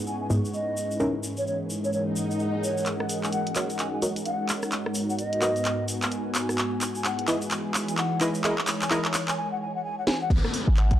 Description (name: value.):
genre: UK garage, two-step garage.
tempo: 129 BPM.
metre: 4/4.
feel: swing 61% on 16ths.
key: unclear.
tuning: A4 = 440 Hz.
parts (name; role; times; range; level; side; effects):
soft string machine; sustained chords; 0.0-9.4 s; G#2 to C#5; -35 LUFS; equal; ensemble chorus, vintage 12-bit sampler grit, sidechain pumping.
ethereal airy pad; texture; 0.0-11.0 s; E3 to C#6; -31 LUFS; equal; ensemble chorus, built-in reverb, sidechain pumping.
mellow hollow wooden flute; melody; 0.1-11.0 s; C#5 to G#5; -32 LUFS; left 1 dB; tape echo.
tube shaker; percussion; 0.1-9.4 s; none; -37 LUFS; left 1 dB; none.
punchy chord stab; stabs; 0.3-9.0 s; G#2 to D#5; -28 LUFS; equal; chorus, cassette tape, tape echo.
swell and downlifter; sound effects; 2.1-2.9, 10.3-11.0 s; none; -32 LUFS; left 1 dB; none.
garage drum kit; drums; 2.9-11.0 s; crash cymbal, handclaps, hi-hat, rim click, snare drum; -28 LUFS; equal; none.
short 808-style bass; bass; 10.3-11.0 s; G#1; -21 LUFS; equal; none.
electronic kick drum; drums; 10.3-11.0 s; none; -24 LUFS; equal; none.
room: light reverb, digital ambience.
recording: dry, gritty hardware recording, vinyl crackle.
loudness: -24 LUFS.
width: side -12 dB against mid.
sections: 0.0-2.9 A section; 2.9-10.3 B section.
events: swell 2.1-2.9; build-up 2.9-10.3; drum fill 2.9-9.4, 10.1; filter sweep on synth stab 2.9-10.3; break 9.4-10.3.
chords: 0.0 C#m7/G#; 1.0 F#13/G#; 2.9 D#m7/G#; 4.7 G#m7; 6.6 C#m7; 8.4 F#13 (rootless); 10.3 D#m7/G#.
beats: 0.07 0.54 | 1.00 1.47 1.93 2.40 | 2.86 3.33 3.79 4.26 | 4.72 5.19 5.65 6.12 | 6.58 7.05 7.51 7.98 | 8.44 8.91 9.37 9.84 | 10.30 10.77.